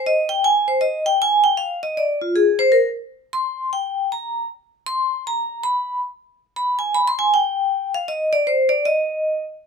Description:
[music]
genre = jazz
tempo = 156 BPM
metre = 4/4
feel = swing 64% on 8ths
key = C minor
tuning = A4 = 440 Hz
[part]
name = vibraphone with medium hard mallets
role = solo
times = 0.0-9.4 s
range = F4 to C6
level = -18 LUFS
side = equal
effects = none
[sound]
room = light reverb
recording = none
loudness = -18 LUFS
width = side -5 dB against mid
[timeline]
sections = 0.0-9.7 A section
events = vibraphone solo 0.0-9.7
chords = none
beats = 0.01 | 0.39 0.77 1.16 1.54 | 1.92 2.31 2.69 3.07 | 3.46 3.84 4.22 4.61 | 4.99 5.37 5.76 6.14 | 6.53 6.91 7.29 7.68 | 8.06 8.44 8.83 9.21

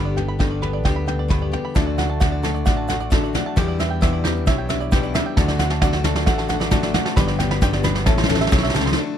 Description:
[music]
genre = indie folk with a building arrangement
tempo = 133 BPM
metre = 4/4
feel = straight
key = D major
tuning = A4 = 440 Hz
[part]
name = fingerpicked plugged-in steel-string acoustic guitar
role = accompaniment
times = 0.0-1.8 s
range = E2 to A4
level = -29 LUFS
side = left 3 dB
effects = none
[part]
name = picked steel-string acoustic guitar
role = accompaniment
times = 0.0-9.2 s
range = E2 to A4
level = -27 LUFS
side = left 7 dB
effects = none
[part]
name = bluegrass banjo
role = arpeggios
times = 0.0-9.0 s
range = G4 to C6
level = -28 LUFS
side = right 10 dB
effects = none
[part]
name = fingered electric bass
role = bass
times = 0.0-8.9 s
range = G1 to E2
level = -24 LUFS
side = equal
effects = none
[part]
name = soft brush drum kit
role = drums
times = 0.2-9.0 s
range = kick drum, snare drum, toms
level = -20 LUFS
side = equal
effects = none
[part]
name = bright upright piano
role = accompaniment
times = 1.7-9.0 s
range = G1 to D5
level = -28 LUFS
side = left 7 dB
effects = none
[part]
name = tube shaker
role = percussion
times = 1.8-8.8 s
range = none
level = -44 LUFS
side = right 21 dB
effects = none
[sound]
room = small room reverb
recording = none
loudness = -17 LUFS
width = side -9 dB against mid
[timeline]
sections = 0.0-9.0 A section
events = build-up 0.0-9.0; drum fill 0.0-9.0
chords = 0.0 G; 1.8 D; 3.6 Em7; 5.4 D; 7.2 G; 8.1 A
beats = 0.40 0.85 1.31 | 1.76 2.21 2.66 3.11 | 3.56 4.02 4.47 4.92 | 5.37 5.82 6.27 6.72 | 7.17 7.62 8.07 8.52 | 8.97

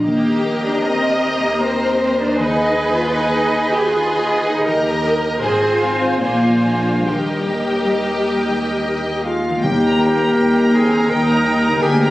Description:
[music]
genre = classical, slow romantic movement for symphony orchestra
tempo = 69-84 BPM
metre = 3/4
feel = rubato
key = Eb major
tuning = A4 = 443 Hz
[part]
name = warm symphonic violin section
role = second line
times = 0.0-12.1 s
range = C5 to Bb5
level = -25 LUFS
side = equal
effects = none
[part]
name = warm symphonic viola section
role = accompaniment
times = 0.0-12.1 s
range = Ab3 to C5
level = -22 LUFS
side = equal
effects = none
[part]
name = concert harp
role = arpeggios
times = 0.0-12.1 s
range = Ab2 to Cb5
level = -28 LUFS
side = left 1 dB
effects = none
[part]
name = rich symphonic cello section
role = bass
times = 0.0-12.1 s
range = D2 to G4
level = -22 LUFS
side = equal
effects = none
[part]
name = rich symphonic double bass section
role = bass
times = 0.0-12.1 s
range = Ab1 to Eb2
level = -24 LUFS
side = equal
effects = none
[part]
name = warm symphonic violin section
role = melody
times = 0.1-12.1 s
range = F4 to Bb5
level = -22 LUFS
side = left 1 dB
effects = none
[part]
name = bright clarinet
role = second line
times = 9.2-12.1 s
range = F4 to Bb4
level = -19 LUFS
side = left 1 dB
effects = none
[part]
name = mellow hollow small flute group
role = second line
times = 9.2-12.1 s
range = F5 to Bb5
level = -29 LUFS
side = equal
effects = none
[part]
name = clear trumpet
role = stabs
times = 9.6-12.1 s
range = Bb4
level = -23 LUFS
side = right 1 dB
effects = none
[part]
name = warm tuba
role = bass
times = 9.6-12.1 s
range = D2 to Eb2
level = -20 LUFS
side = right 1 dB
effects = none
[part]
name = timpani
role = percussion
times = 9.6-10.7 s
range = Eb3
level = -26 LUFS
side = left 1 dB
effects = none
[part]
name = mellow French horn section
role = sustained chords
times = 9.7-12.1 s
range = G3 to Bb3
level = -20 LUFS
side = left 1 dB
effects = none
[sound]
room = moderate scoring stage reverb, RT60 2.0 s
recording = recorded on a phone in the room, club reverb, compression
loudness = -15 LUFS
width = side -16 dB against mid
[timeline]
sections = 0.0-9.6 A section; 9.6-12.1 B section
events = none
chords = 0.1 Eb; 2.4 Abm/Eb; 4.7 Eb; 5.4 Fm/Ab; 6.2 Bb9; 7.1 Eb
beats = | 0.06 0.86 1.62 | 2.38 3.13 3.89 | 4.66 5.43 6.24 | 7.09 7.95 8.81 | 9.64 10.38 11.10 | 11.83

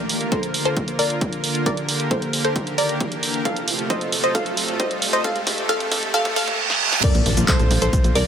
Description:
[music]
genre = uplifting trance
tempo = 134 BPM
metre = 4/4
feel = straight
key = Bb major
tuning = A4 = 438 Hz
[part]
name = wide unison pluck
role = melody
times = 0.0-8.3 s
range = A4 to F5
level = -24 LUFS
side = equal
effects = sidechain pumping, tape echo
[part]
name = supersaw pad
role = sustained chords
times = 0.0-8.2 s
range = C3 to Bb4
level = -26 LUFS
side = equal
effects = sidechain pumping
[part]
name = riser, reverse cymbal and impact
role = sound effects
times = 0.0-8.3 s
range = none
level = -26 LUFS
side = right 2 dB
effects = none
[part]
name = punchy analog drum machine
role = drums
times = 0.1-8.2 s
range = crash cymbal, handclaps, hi-hat, shaker, snare drum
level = -24 LUFS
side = right 2 dB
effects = none
[part]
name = electronic kick drum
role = drums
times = 0.3-8.0 s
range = none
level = -24 LUFS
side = equal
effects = high-pass filter on kick
[part]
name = warm concert grand piano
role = second line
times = 7.0-8.3 s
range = C5 to D5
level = -28 LUFS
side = right 3 dB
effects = sidechain pumping, digital delay
[part]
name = tight sequencer bass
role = bass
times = 7.1-8.2 s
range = Bb1 to C2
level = -21 LUFS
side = equal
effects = sidechain pumping
[sound]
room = light reverb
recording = high-pass filter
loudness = -18 LUFS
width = side -8 dB against mid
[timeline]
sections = 0.0-7.0 A section; 7.0-8.3 B section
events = build-up 0.0-7.0; riser 0.0-6.6; filter sweep 0.0-7.0; drum fill 3.5-6.6, 6.7-7.0; reverse cymbal 6.1-7.0; drop 7.0-8.3; impact 7.0-8.3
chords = 0.0 Bb; 3.5 F; 7.0 Bb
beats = 0.32 0.77 1.21 | 1.66 2.11 2.56 3.00 | 3.45 3.90 4.35 4.80 | 5.24 5.69 6.14 6.59 | 7.04 7.48 7.93

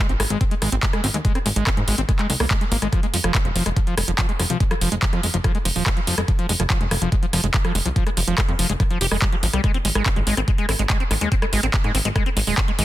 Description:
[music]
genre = psychedelic trance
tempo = 143 BPM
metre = 4/4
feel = straight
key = F minor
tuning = A4 = 440 Hz
[part]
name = screaming distorted acid line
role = riff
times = 0.0-12.8 s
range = F3 to G4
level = -25 LUFS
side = moving between left 3 dB and right 3 dB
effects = distortion, chorus, auto-pan, sidechain pumping, tape echo
[part]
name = plucky analog bass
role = bass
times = 0.1-12.8 s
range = Eb1 to Ab2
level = -23 LUFS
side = equal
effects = none
[part]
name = garage drum kit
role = drums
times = 0.1-12.8 s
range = handclaps, hi-hat, rim click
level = -24 LUFS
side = equal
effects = soft clipping on snare
[part]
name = electronic kick drum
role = drums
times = 0.4-12.7 s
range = none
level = -21 LUFS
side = equal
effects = none
[sound]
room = digital ambience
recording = dense, heavily limited modern master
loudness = -18 LUFS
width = side -15 dB against mid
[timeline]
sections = 0.0-12.8 A section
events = none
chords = 0.0 Ab5; 2.9 F5; 9.6 Ab5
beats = 0.41 0.83 | 1.25 1.67 2.09 2.51 | 2.93 3.35 3.77 4.18 | 4.60 5.02 5.44 5.86 | 6.28 6.70 7.12 7.54 | 7.96 8.38 8.80 9.22 | 9.64 10.06 10.48 10.90 | 11.32 11.74 12.16 12.58

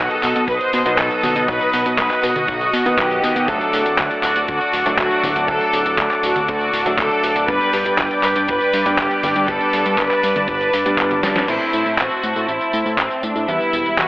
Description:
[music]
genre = italo disco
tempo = 120 BPM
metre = 4/4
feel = straight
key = unclear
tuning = A4 = 440 Hz
[part]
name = clear studio violin section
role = melody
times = 0.0-14.1 s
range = C4 to C5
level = -20 LUFS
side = equal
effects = tape echo
[part]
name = lush unison pad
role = sustained chords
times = 0.0-14.1 s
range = A4 to E6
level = -21 LUFS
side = equal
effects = chorus
[part]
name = clear grand piano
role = stabs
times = 0.0-14.1 s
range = G2 to C5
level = -24 LUFS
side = equal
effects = low-pass filter
[part]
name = fat analog bass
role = bass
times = 0.0-14.1 s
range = D1 to B2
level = -24 LUFS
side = equal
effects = tube saturation
[part]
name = detuned 8-bit digital drum machine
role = drums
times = 0.1-14.1 s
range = congas, crash cymbal, handclaps, hi-hat, snare drum, tambourine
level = -22 LUFS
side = equal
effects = small room ambience
[part]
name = kick drum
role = drums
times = 0.5-11.1 s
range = none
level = -29 LUFS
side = equal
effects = small room ambience
[sound]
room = moderate plate reverb, RT60 2.3 s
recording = vinyl crackle, telephone sound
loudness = -15 LUFS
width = side -19 dB against mid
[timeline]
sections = 0.0-11.5 A section; 11.5-14.1 B section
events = drum fill 11.2; filter sweep on grand piano 11.5-14.1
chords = 0.0 B; 3.5 D; 7.5 G; 11.5 Am; 13.5 Em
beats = 0.48 0.98 | 1.48 1.98 2.48 2.98 | 3.48 3.98 4.48 4.98 | 5.48 5.98 6.48 6.98 | 7.48 7.98 8.48 8.98 | 9.48 9.98 10.48 10.98 | 11.48 11.98 12.48 12.98 | 13.48 13.98

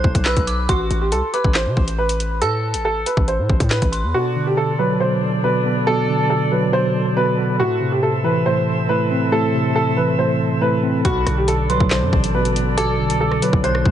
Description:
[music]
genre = hip hop, drill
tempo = 139 BPM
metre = 4/4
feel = half-time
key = B phrygian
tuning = A4 = 440 Hz
[part]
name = warm upright piano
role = melody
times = 0.0-13.9 s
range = F#4 to C5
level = -21 LUFS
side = right 1 dB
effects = tape echo
[part]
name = dark detuned synth bell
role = second line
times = 0.0-4.1, 11.1-13.9 s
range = B5 to F#6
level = -28 LUFS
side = right 1 dB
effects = chorus, phaser, tape echo
[part]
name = hard-hitting 808-style bass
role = bass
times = 0.0-4.1, 11.0-13.9 s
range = A1 to C3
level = -22 LUFS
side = equal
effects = none
[part]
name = drill drum kit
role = drums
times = 0.0-4.0, 11.0-13.9 s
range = handclaps, hi-hat, kick drum, rim click, snare drum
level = -20 LUFS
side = equal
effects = none
[part]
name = mellow tine electric piano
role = accompaniment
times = 4.1-13.9 s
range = A2 to C4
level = -20 LUFS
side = equal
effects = fast stereo tremolo
[part]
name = bright flute section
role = sustained chords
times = 4.1-13.9 s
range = C4 to E5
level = -26 LUFS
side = right 1 dB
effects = none
[sound]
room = digital ambience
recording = nothing above 10.6 kHz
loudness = -16 LUFS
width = side -10 dB against mid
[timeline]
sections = 0.0-4.1 A section; 4.1-13.9 B section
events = none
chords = 0.0 Bm; 0.7 Am; 4.1 Bm7; 7.6 Am; 11.0 Bm7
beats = 0.26 | 0.69 1.12 1.55 1.98 | 2.42 2.85 3.28 3.71 | 4.14 4.57 5.01 5.44 | 5.87 6.30 6.73 7.16 | 7.60 8.03 8.46 8.89 | 9.32 9.75 10.19 10.62 | 11.05 11.48 11.91 12.34 | 12.78 13.21 13.64

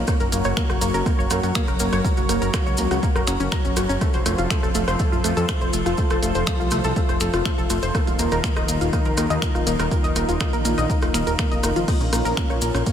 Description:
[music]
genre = melodic techno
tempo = 122 BPM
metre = 4/4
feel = straight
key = unclear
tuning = A4 = 440 Hz
[part]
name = lush unison pad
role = sustained chords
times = 0.0-12.9 s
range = Eb3 to Db5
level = -26 LUFS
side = left 1 dB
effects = chorus, sidechain pumping
[part]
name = fat analog bass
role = bass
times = 0.0-12.8 s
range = Eb1 to Gb2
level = -26 LUFS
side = equal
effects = sidechain pumping
[part]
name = warbly dusty pluck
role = arpeggios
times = 0.1-12.9 s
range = A3 to Bb6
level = -25 LUFS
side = equal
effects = chorus, sidechain pumping, diffuse ambient delay
[part]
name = electronic kick drum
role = drums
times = 0.1-12.9 s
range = none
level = -24 LUFS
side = equal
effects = none
[part]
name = punchy analog drum machine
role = drums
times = 0.1-12.9 s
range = crash cymbal, finger snaps, hi-hat, ride cymbal, rim click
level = -29 LUFS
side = equal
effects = none
[part]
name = maracas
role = percussion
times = 0.1-12.9 s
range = none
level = -33 LUFS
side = left 2 dB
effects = none
[sound]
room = light reverb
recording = none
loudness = -19 LUFS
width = side -9 dB against mid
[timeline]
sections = 0.0-12.9 A section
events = none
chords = 0.1 Gb; 4.0 F; 7.9 Ebsus2; 11.9 Bbm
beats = | 0.08 0.57 1.06 1.55 | 2.04 2.54 3.03 3.52 | 4.01 4.50 5.00 5.49 | 5.98 6.47 6.96 7.45 | 7.95 8.44 8.93 9.42 | 9.91 10.40 10.90 11.39 | 11.88 12.37 12.86

